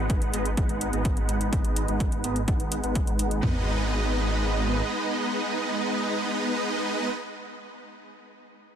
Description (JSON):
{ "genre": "EDM, festival progressive house", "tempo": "126 BPM", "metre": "4/4", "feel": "straight", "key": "G# minor", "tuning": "A4 = 440 Hz", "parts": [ { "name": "supersaw chords", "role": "riff", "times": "0.0-7.1 s", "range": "G#3 to F#5", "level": "-27 LUFS", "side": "right 1 dB", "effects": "analog chorus, sidechain pumping, low-pass filter, dub echo" }, { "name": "wide detuned saw bass", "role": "bass", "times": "0.0-4.8 s", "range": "G#1", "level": "-29 LUFS", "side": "equal", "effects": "chorus, sidechain pumping" }, { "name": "electronic hi-hat", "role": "drums", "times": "0.1-3.4 s", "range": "none", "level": "-34 LUFS", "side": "equal", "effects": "overdrive" }, { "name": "house drum kit", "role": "drums", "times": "0.1-3.5 s", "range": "kick drum, toms", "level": "-26 LUFS", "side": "equal", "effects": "overdrive" } ], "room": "little or no reverb", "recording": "none", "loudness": "-24 LUFS", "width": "side -9 dB against mid", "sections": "0.0-3.4 A section; 3.4-7.2 B section", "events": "filter sweep on supersaw synth 0.0-3.4", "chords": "0.0 G#m", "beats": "0.10 0.57 1.05 | 1.53 2.00 2.48 2.95 | 3.43 3.91 4.38 4.86 | 5.33 5.81 6.29 6.76" }